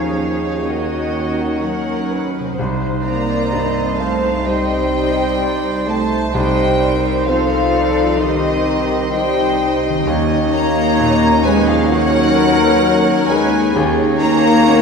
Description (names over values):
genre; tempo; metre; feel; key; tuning
cinematic, emotional film score for orchestra; 64 BPM; 4/4; rubato; unclear; A4 = 438 Hz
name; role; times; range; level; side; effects
warm symphonic violin section; melody; 0.0-14.8 s; Eb5 to Bb5; -22 LUFS; left 2 dB; none
clear clarinet; second line; 0.0-14.8 s; Eb4; -23 LUFS; left 4 dB; none
clear oboe; second line; 0.0-14.8 s; C5 to Db5; -26 LUFS; right 2 dB; none
flute section; second line; 0.0-14.8 s; Gb4 to D5; -23 LUFS; equal; none
warm symphonic violin section; second line; 0.0-14.8 s; Gb4 to F5; -25 LUFS; left 1 dB; none
bright grand piano; accompaniment; 0.0-14.8 s; C2 to Db4; -25 LUFS; equal; none
dark symphonic viola section; accompaniment; 0.0-14.8 s; C4 to Eb4; -23 LUFS; right 1 dB; none
dark French horn section; sustained chords; 0.0-14.8 s; Eb3 to Bb3; -22 LUFS; left 2 dB; none
rich symphonic cello section; bass; 0.0-14.8 s; Eb3 to Bb3; -23 LUFS; right 3 dB; none
warm symphonic double bass section; bass; 0.0-14.8 s; C2 to Eb2; -24 LUFS; right 3 dB; none
concert harp; arpeggios; 2.4-13.9 s; C3 to Bb5; -29 LUFS; left 2 dB; none
room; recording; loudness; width
wet scoring stage reverb, RT60 1.6 s; heard from further back in the room; -14 LUFS; side -5 dB against mid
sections
0.0-14.8 A section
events
none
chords
0.0 Ebm7; 2.6 Cm; 10.1 Ebm7